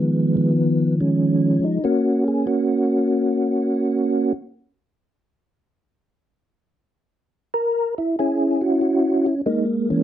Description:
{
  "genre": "jazz",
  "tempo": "94 BPM",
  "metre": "4/4",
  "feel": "swing 69% on 8ths",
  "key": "unclear",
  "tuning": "A4 = 440 Hz",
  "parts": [
    { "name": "percussive tonewheel organ", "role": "solo", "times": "0.0-10.0 s", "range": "Eb3 to Bb4", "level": "-18 LUFS", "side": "equal", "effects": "slow rotary speaker, chorus vibrato" }
  ],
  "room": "moderate studio reverb, RT60 0.6 s",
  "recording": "dark, warm production",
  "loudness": "-18 LUFS",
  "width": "side -11 dB against mid",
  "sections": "0.0-10.0 A section",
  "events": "none",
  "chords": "0.0 Db9; 1.8 Gb; 4.4 N.C.; 6.9 Gb9"
}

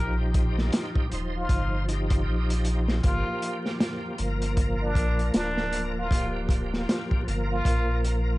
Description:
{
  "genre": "trip hop",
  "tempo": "78 BPM",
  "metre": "4/4",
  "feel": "swing 60% on 16ths",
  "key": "G minor",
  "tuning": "A4 = 440 Hz",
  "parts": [
    { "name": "trumpet with plunger mute", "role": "melody", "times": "0.0-8.0 s", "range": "D4 to Bb4", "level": "-34 LUFS", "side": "equal", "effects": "tape echo" },
    { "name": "bright tonewheel organ", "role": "accompaniment", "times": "0.0-8.4 s", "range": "F3 to C5", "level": "-31 LUFS", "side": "equal", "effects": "chorus vibrato, slow rotary speaker, harmonic tremolo, tape echo" },
    { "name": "warm sub bass", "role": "bass", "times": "0.0-8.4 s", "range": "D1 to Bb1", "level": "-27 LUFS", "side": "equal", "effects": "none" },
    { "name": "crunchy breakbeat drum kit", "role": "drums", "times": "0.3-8.3 s", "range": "hi-hat, kick drum, snare drum", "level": "-26 LUFS", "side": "equal", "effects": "none" }
  ],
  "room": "small room ambience",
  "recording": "vinyl crackle, nothing above 10.4 kHz",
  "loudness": "-24 LUFS",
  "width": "side -19 dB against mid",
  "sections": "0.0-8.4 A section",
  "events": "none",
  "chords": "0.0 Ebadd9; 3.0 Gm7"
}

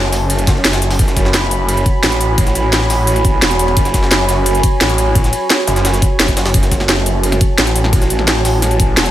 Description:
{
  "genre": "dark technical drum and bass",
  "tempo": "173 BPM",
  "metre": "4/4",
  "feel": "straight",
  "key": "F# minor",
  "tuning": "A4 = 440 Hz",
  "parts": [
    { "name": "dark analog pad", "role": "sustained chords", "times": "0.0-9.1 s", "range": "F#4 to B5", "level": "-18 LUFS", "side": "right 1 dB", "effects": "chorus, sidechain pumping" },
    { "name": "snarling distorted saw bass", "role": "bass", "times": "0.0-9.1 s", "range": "E1 to A1", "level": "-16 LUFS", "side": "equal", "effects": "distortion, overdrive, sidechain pumping" },
    { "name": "jungle sampler-style drum kit", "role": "drums", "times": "0.0-9.1 s", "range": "hi-hat, ride cymbal, snare drum", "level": "-24 LUFS", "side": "right 1 dB", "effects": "overdrive, high-pass filter on cymbals, high-pass filter on snare, high-pass filter on hats" },
    { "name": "drum and bass drum kit", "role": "drums", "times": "0.1-9.1 s", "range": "hi-hat, snare drum", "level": "-16 LUFS", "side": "equal", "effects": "none" },
    { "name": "electronic kick drum", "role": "drums", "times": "0.5-8.9 s", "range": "none", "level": "-14 LUFS", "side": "equal", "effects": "overdrive" }
  ],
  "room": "light reverb, digital ambience",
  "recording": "none",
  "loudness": "-11 LUFS",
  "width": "side -13 dB against mid",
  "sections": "0.0-9.1 A section",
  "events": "none",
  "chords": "0.0 F#madd9"
}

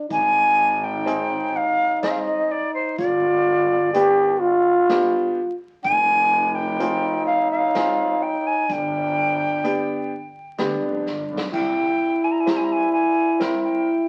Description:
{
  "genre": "klezmer",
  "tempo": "63 BPM",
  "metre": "3/4",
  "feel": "straight",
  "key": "G phrygian dominant",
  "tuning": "A4 = 444 Hz",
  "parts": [
    { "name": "growling trombone", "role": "second line", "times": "0.0-14.1 s", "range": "D4 to G4", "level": "-24 LUFS", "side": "equal", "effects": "none" },
    { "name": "breathy bright concert flute", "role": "melody", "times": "0.1-14.1 s", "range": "C5 to Bb5", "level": "-24 LUFS", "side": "equal", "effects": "none" },
    { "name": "clear double bass", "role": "bass", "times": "0.1-11.8 s", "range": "F1 to D2", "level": "-36 LUFS", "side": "equal", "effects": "none" },
    { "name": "street-band drum kit", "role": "drums", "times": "0.1-13.6 s", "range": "crash cymbal, hi-hat, kick drum, snare drum", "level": "-37 LUFS", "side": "equal", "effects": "none" },
    { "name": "clear upright piano", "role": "accompaniment", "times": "1.1-13.9 s", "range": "B3 to Bb4", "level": "-29 LUFS", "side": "equal", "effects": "none" }
  ],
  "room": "moderate studio reverb, RT60 0.5 s",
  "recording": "very old 78 rpm record, vinyl crackle",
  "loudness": "-21 LUFS",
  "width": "mono",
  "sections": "0.1-11.5 A section; 11.5-14.1 B section",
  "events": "drum fill 11.1-11.5",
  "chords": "0.1 Ab; 3.0 G; 5.8 Fm; 8.7 G; 11.5 C"
}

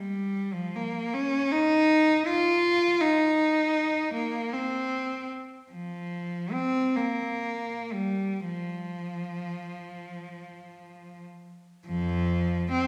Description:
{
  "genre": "classical, free, expressive piece for unaccompanied cello",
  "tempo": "26-55 BPM (dotted quarters)",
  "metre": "6/8",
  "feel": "rubato",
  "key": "unclear",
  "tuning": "A4 = 440 Hz",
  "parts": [
    { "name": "rich cello", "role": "solo", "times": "0.0-12.9 s", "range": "F2 to F4", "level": "-28 LUFS", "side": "equal", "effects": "none" }
  ],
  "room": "wet recital hall reverb, RT60 1.6 s",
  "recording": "heard from further back in the room",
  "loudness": "-27 LUFS",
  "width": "mono",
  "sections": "0.0-11.9 A section; 11.9-12.9 A section",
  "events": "none",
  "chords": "none"
}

